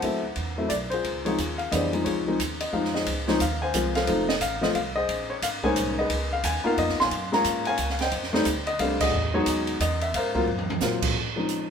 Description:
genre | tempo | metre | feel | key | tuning
jazz piano trio | 178 BPM | 3/4 | swing 62% on 8ths | Db major | A4 = 438 Hz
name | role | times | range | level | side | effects
warm baby grand piano | melody | 0.0-11.7 s | Fb3 to C6 | -25 LUFS | left 2 dB | none
upright bass | bass | 0.0-11.1 s | F1 to Bb2 | -32 LUFS | right 2 dB | none
open jazz drum kit | drums | 0.0-11.6 s | crash cymbal, hi-hat, kick drum, ride cymbal, snare drum, toms | -30 LUFS | right 2 dB | none
room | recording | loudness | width
moderate stone room reverb, RT60 1.1 s | band playing live in one room | -23 LUFS | side -7 dB against mid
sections
0.0-3.1 A section; 3.1-11.2 B section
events
band accent 9.0; drum fill 10.5-10.8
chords
0.0 D9; 1.0 Dbmaj7; 3.1 Dbmaj9; 4.1 F7; 5.1 Bbm11; 6.1 Db13; 7.1 Gbmaj9; 8.1 F9; 9.1 Emaj9; 10.1 Ab13; 11.2 Dbmaj7

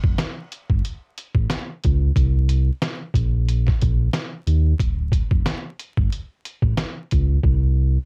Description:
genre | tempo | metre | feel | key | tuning
hip hop, boom-bap hip-hop | 91 BPM | 4/4 | swing 56% on 16ths | unclear | A4 = 440 Hz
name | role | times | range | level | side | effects
sub bass with octave | bass | 0.0-8.0 s | D1 to Eb2 | -21 LUFS | equal | none
trip hop sampler-style drum kit | drums | 0.0-7.6 s | hi-hat, kick drum, snare drum | -24 LUFS | equal | cassette tape
room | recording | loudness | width
little or no reverb | home recording on cassette, vinyl crackle | -21 LUFS | mono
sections
0.0-8.1 A section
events
hi-hats muted 7.4-8.1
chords
none

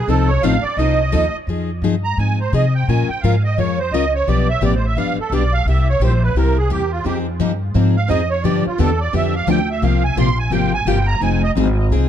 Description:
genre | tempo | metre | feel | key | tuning
acoustic string swing (jazz manouche) | 173 BPM | 4/4 | swing 60% on 8ths | F minor | A4 = 439 Hz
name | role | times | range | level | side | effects
musette accordion | melody | 0.0-11.5 s | F4 to C6 | -21 LUFS | right 5 dB | tape echo
upright bass | bass | 0.0-12.1 s | F1 to C3 | -18 LUFS | equal | none
picked plugged-in steel-string acoustic guitar | accompaniment | 0.1-12.1 s | B2 to B4 | -21 LUFS | left 7 dB | none
picked steel-string acoustic guitar | accompaniment | 0.1-1.3, 7.0-12.1 s | C3 to A4 | -25 LUFS | right 6 dB | none
room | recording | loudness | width
light reverb | dark, warm production | -15 LUFS | side -10 dB against mid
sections
0.0-1.5 A section; 1.5-12.1 A section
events
accordion solo 0.0-1.5, 1.5-12.1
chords
0.1 F7; 1.5 Fm7; 2.9 Bbm7; 4.3 G7; 5.7 C7; 7.1 Fm7; 8.4 G7; 9.8 C7sus4; 11.2 Fm7

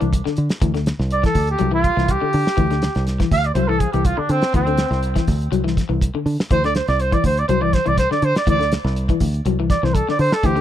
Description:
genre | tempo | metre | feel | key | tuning
afrobeat | 122 BPM | 4/4 | straight | unclear | A4 = 439 Hz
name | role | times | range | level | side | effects
mellow trumpet | melody | 0.0-10.6 s | C4 to F5 | -20 LUFS | right 2 dB | tape echo
electric guitar at the edge of break-up | arpeggios | 0.0-10.6 s | D3 to F#3 | -23 LUFS | left 9 dB | wide subtle chorus
fingered electric bass | bass | 0.0-10.6 s | C2 to D3 | -20 LUFS | right 1 dB | none
cloth-damped thuddy drum kit | drums | 0.0-10.6 s | hi-hat, kick drum, snare drum | -22 LUFS | equal | none
room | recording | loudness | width
little or no reverb | dry, close 1970s-style studio recording | -16 LUFS | side -11 dB against mid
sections
0.0-10.6 A section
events
trumpet solo 0.0-10.6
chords
0.0 D7sus2

